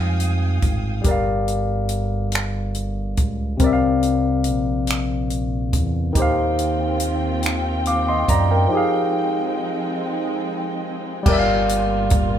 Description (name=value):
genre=slow six-eight R&B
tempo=47 BPM (dotted quarters)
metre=6/8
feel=straight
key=unclear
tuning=A4 = 443 Hz
part: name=barky tine electric piano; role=accompaniment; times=0.0-12.4 s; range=C3 to D6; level=-21 LUFS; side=left 2 dB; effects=overdrive
part: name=dark studio string section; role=sustained chords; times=0.0-1.0, 6.2-12.4 s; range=Eb3 to Eb6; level=-27 LUFS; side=right 1 dB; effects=none
part: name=round analog bass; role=bass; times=0.0-12.4 s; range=G1 to Gb2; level=-23 LUFS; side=right 1 dB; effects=none
part: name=compact cocktail drum kit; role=drums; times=0.2-12.3 s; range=crash cymbal, finger snaps, hi-hat, kick drum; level=-22 LUFS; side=equal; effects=none
room=light reverb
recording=band playing live in one room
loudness=-18 LUFS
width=side -9 dB against mid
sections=0.0-1.1 A section; 1.1-11.3 B section; 11.3-12.4 A section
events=tine electric piano solo 0.0-1.1; break 8.7-11.3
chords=0.0 Fm9; 1.1 Gm7; 3.6 C9sus4; 6.2 Eb69; 8.7 Fm9; 11.3 Gm7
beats=| 1.05 2.33 | 3.60 4.88 | 6.16 7.43 | 8.71 9.99 | 11.26